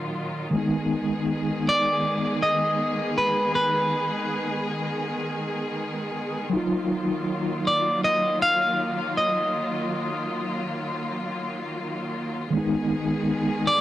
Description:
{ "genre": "trip hop", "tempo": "80 BPM", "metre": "4/4", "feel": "swing 57% on 16ths", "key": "Eb minor", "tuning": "A4 = 440 Hz", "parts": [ { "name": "mellow tine electric piano", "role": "accompaniment", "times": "0.0-13.8 s", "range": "Eb3 to F4", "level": "-28 LUFS", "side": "equal", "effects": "medium stereo tremolo, tape echo" }, { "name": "clear studio string section", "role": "sustained chords", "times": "0.0-13.8 s", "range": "Bb2 to Ab4", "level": "-29 LUFS", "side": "equal", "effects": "vintage 12-bit sampler grit, low-pass filter" }, { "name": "electric guitar at the edge of break-up", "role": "melody", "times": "1.7-13.8 s", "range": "Cb5 to F5", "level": "-23 LUFS", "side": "equal", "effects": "tape echo" } ], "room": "light reverb", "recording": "dry, gritty hardware recording", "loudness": "-23 LUFS", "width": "side -14 dB against mid", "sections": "0.0-13.8 A section", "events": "none", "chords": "0.0 Ebmadd9; 0.5 Abm/Eb; 6.5 Ebmadd9; 12.5 Abm/Eb", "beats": "| 0.54 1.29 2.04 2.79 | 3.54 4.29 5.04 5.79 | 6.54 7.29 8.04 8.79 | 9.54 10.29 11.04 11.79 | 12.54 13.29" }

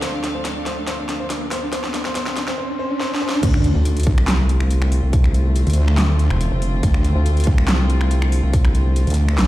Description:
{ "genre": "heavy wobble dubstep", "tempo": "141 BPM", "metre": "4/4", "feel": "half-time", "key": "D minor", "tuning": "A4 = 440 Hz", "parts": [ { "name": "clear grand piano", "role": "melody", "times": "0.0-3.4 s", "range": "D4 to C5", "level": "-26 LUFS", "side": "left 1 dB", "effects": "tape echo" }, { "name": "warm chamber string section", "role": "sustained chords", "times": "0.0-9.5 s", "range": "D2 to F4", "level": "-28 LUFS", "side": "left 1 dB", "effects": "vintage 12-bit sampler grit, sidechain pumping" }, { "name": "dubstep drum kit", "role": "drums", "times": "0.0-9.5 s", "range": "crash cymbal, finger snaps, handclaps, hi-hat, snare drum", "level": "-25 LUFS", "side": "equal", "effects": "high-pass filter on hats, high-pass filter on snare, high-pass filter on cymbals" }, { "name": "riser and sub drop", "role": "sound effects", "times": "0.1-5.1 s", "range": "none", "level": "-26 LUFS", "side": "equal", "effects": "none" }, { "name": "bright chamber string section", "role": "texture", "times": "0.0-2.6 s", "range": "D4 to F5", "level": "-32 LUFS", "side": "right 1 dB", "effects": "sidechain pumping" }, { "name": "wobble bass", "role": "bass", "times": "3.4-9.5 s", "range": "E1 to D2", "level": "-16 LUFS", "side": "equal", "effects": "chorus, overdrive" }, { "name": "electronic kick drum", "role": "drums", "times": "3.4-8.6 s", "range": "none", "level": "-17 LUFS", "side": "equal", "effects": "none" }, { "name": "vowel-sweep wobble bass", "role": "bass", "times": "3.8-9.1 s", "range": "F1 to D2", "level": "-17 LUFS", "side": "equal", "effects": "chorus, overdrive" } ], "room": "light reverb, digital ambience", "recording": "played on a big sound system in a bare room, large studio reverb", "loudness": "-16 LUFS", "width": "side -15 dB against mid", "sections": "0.0-3.4 A section; 3.4-9.5 B section", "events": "build-up 0.0-3.4; drum fill 0.0-2.6, 3.0-3.4; riser 0.1-3.4; drop 3.4-9.5; impact 3.4-5.1", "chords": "0.0 Dm7", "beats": "| 0.03 0.45 0.88 1.30 | 1.73 2.15 2.58 3.00 | 3.43 3.85 4.28 4.71 | 5.13 5.56 5.98 6.41 | 6.83 7.26 7.68 8.11 | 8.54 8.96 9.39" }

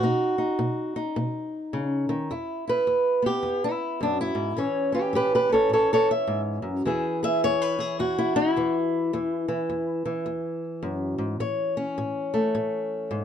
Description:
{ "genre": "acoustic country blues, solo or duo", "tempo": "106 BPM", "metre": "4/4", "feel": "swing 62% on 8ths", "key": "E major", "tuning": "A4 = 442 Hz", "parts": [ { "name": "fingerpicked old ladder-braced acoustic guitar", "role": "solo", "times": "0.0-13.2 s", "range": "E2 to E5", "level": "-23 LUFS", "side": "equal", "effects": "none" } ], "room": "moderate booth ambience, RT60 0.3 s", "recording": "none", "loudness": "-23 LUFS", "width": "side -9 dB against mid", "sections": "0.0-2.3 A section; 2.3-13.2 B section", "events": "steel-string acoustic guitar solo 0.0-2.3", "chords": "0.0 B; 2.3 E5; 4.6 A; 6.8 E; 11.4 A", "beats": "| 0.02 0.59 1.16 1.72 | 2.29 2.86 3.43 4.00 | 4.57 5.13 5.70 6.27 | 6.84 7.41 7.98 8.55 | 9.12 9.69 10.26 10.83 | 11.40 11.97 12.54 13.11" }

